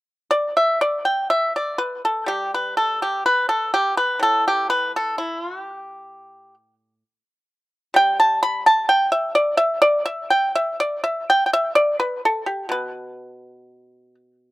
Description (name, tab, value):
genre	chinese traditional, Chinese solo plucked strings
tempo	63 BPM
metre	4/4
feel	uneven beats, rubato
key	G gong mode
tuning	A4 = 441 Hz
part	pipa	solo	0.3-14.5 s	A2 to B5	-18 LUFS	equal	slapback echo
room	little or no reverb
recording	recorded outdoors, with no room sound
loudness	-18 LUFS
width	side -18 dB against mid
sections	0.3-14.5 A section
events	none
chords	none